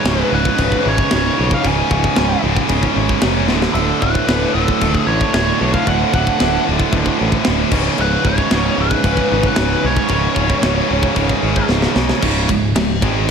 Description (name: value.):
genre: heavy metal.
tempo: 113 BPM.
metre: 4/4.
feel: straight.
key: unclear.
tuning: A4 = 440 Hz.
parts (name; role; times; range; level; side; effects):
nasal lead guitar with a parked wah; melody; 0.0-11.7 s; A4 to G#5; -21 LUFS; equal; overdrive, slapback echo, ping-pong delay.
heavy high-gain guitar; riff; 0.0-13.3 s; C#2 to G#3; -22 LUFS; left 12 dB; distortion, slapback echo.
heavy high-gain guitar; riff; 0.0-13.3 s; C#2 to G#3; -23 LUFS; left 1 dB; distortion, slapback echo.
high-gain distorted guitar; riff; 0.0-13.3 s; C#2 to G#3; -20 LUFS; right 11 dB; distortion.
modern bright picked electric bass; bass; 0.1-13.3 s; C#1 to B1; -20 LUFS; left 1 dB; none.
tight metal drum kit; drums; 0.1-13.3 s; crash cymbal, kick drum, ride cymbal, snare drum; -20 LUFS; equal; none.
room: moderate lush hall reverb, RT60 1.7 s, small room ambience.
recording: big arena sound.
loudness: -13 LUFS.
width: side -6 dB against mid.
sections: 0.0-12.2 A section; 12.2-13.3 B section.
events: drum fill 3.5, 11.7-12.2.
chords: 0.0 C#5; 3.5 D5; 7.7 C#5.